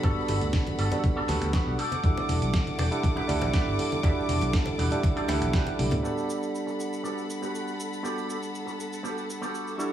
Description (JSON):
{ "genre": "nu-disco, nu disco", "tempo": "120 BPM", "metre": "4/4", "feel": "straight", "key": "unclear", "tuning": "A4 = 442 Hz", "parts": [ { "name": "barky tine electric piano", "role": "accompaniment", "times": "0.0-9.9 s", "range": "G3 to F#5", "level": "-30 LUFS", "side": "right 2 dB", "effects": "sidechain pumping, digital delay" }, { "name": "warm studio string section", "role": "sustained chords", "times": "0.0-9.9 s", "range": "G3 to D6", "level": "-36 LUFS", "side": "left 3 dB", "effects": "sidechain pumping" }, { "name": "electric guitar with an envelope filter", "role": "riff", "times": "0.0-9.9 s", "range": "B3 to B4", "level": "-35 LUFS", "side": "right 2 dB", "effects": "lush chorus, low-pass filter, digital delay" }, { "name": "fingered electric bass", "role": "bass", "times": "0.0-6.0 s", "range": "E1 to D2", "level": "-28 LUFS", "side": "equal", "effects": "sidechain pumping" }, { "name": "dusty soul sampler-style drum kit", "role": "drums", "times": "0.0-9.9 s", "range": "finger snaps, hi-hat, shaker, snare drum, toms", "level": "-35 LUFS", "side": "equal", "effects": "none" }, { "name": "electronic kick drum", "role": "drums", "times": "0.0-5.6 s", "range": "none", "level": "-26 LUFS", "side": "equal", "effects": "none" }, { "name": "congas", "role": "percussion", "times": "0.0-6.0 s", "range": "none", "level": "-36 LUFS", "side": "left 2 dB", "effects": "none" } ], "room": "light reverb", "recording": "small room ambience", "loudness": "-25 LUFS", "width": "side -11 dB against mid", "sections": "0.0-6.0 A section; 6.0-9.9 B section", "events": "drum fill 5.8; filter sweep on clean electric guitar 6.0-9.9", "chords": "0.0 Gmaj9; 1.8 Em11; 6.0 Gmaj9", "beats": "| 0.04 0.54 1.04 1.54 | 2.04 2.54 3.04 3.54 | 4.04 4.54 5.04 5.54 | 6.04 6.54 7.04 7.54 | 8.04 8.54 9.04 9.54" }